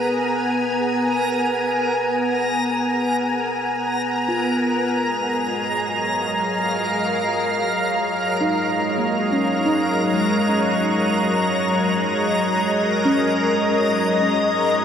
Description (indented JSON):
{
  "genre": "ambient",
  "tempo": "free time",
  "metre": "none",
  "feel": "none",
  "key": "unclear",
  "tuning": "A4 = 440 Hz",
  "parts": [
    { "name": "soft additive organ-like pad", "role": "sustained chords", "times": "0.0-14.8 s", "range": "F#3 to A#5", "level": "-19 LUFS", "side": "equal", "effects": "ensemble chorus, built-in reverb" },
    { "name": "handpan", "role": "arpeggios", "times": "0.0-14.8 s", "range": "G#3 to G#4", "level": "-26 LUFS", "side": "equal", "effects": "diffuse ambient delay" },
    { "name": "backwards swelling texture", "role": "texture", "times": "0.0-14.8 s", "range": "A#4 to A#5", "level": "-26 LUFS", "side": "left 1 dB", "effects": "built-in reverb" }
  ],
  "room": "wet huge ambient reverb, RT60 7.0 s",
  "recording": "none",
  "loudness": "-18 LUFS",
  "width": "side -8 dB against mid",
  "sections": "0.0-14.8 A section",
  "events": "none",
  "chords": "0.0 G#madd9; 4.9 F#maj9",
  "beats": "free time"
}